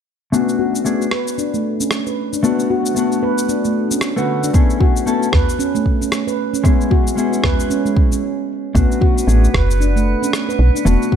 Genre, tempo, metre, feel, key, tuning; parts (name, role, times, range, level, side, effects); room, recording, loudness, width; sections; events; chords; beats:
organic downtempo; 114 BPM; 4/4; swing 59% on 16ths; B dorian; A4 = 440 Hz
mellow electric guitar; accompaniment; 0.3-11.2 s; D3 to A4; -21 LUFS; left 1 dB; spring reverb, sidechain pumping, low-pass filter, digital delay
handpan; arpeggios; 0.3-11.2 s; G#3 to B4; -18 LUFS; left 1 dB; low-pass filter, digital delay
electronic shaker and rim click; drums; 0.3-11.1 s; -24 LUFS; left 1 dB; overdrive
electronic kick drum; drums; 4.5-11.2 s; -15 LUFS; equal
udu; percussion; 5.3-9.7 s; -20 LUFS; equal
drifting glass-harmonics texture; texture; 9.1-11.2 s; B3 to B4; -26 LUFS; right 2 dB; chorus, built-in reverb
woody FM bass; bass; 8.8-11.0 s; E1 to B1; -14 LUFS; equal; sidechain pumping
light reverb, digital ambience; -14 LUFS; side -8 dB against mid
0.3-8.8 A section; 8.8-11.2 B section
filter sweep on handpan 0.3-8.8; stop 8.2-8.8
0.3 Bm7; 2.4 D6; 4.5 F#m7; 6.6 C#m; 8.8 Bm7
| 0.33 0.86 1.39 1.91 | 2.44 2.96 3.49 4.02 | 4.54 5.07 5.59 6.12 | 6.65 7.17 7.70 8.23 | 8.75 9.28 9.81 10.33 | 10.86